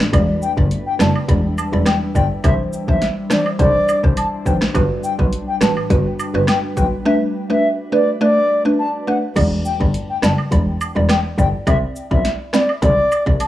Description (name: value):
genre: dancehall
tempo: 104 BPM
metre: 4/4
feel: straight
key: E minor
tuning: A4 = 440 Hz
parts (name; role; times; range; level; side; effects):
- mallet-like synth pluck; accompaniment; 0.0-13.4 s; E3 to D5; -21 LUFS; right 1 dB; chorus, phaser
- glassy FM pad; sustained chords; 0.1-9.3 s; G3 to C5; -29 LUFS; left 1 dB; ensemble chorus, built-in reverb, sidechain pumping
- deep house drum kit; drums; 0.0-13.5 s; crash cymbal, hi-hat, kick drum, rim click, snare drum; -19 LUFS; equal; overdrive
- clear double bass; bass; 0.1-13.3 s; E1 to C2; -19 LUFS; equal; none
- woodblock and cabasa; percussion; 0.1-13.5 s; none; -29 LUFS; right 5 dB; none
- bright reedy baroque flute; melody; 0.4-13.5 s; D5 to A5; -20 LUFS; left 2 dB; analog delay
room: light reverb, digital ambience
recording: dry, gritty hardware recording, small room ambience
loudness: -15 LUFS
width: side -14 dB against mid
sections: 0.0-9.4 A section; 9.4-13.5 A section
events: none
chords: 0.1 Em7; 2.4 Cadd9; 4.8 Gmaj7; 7.1 Bm7; 9.4 Em7; 11.7 Cadd9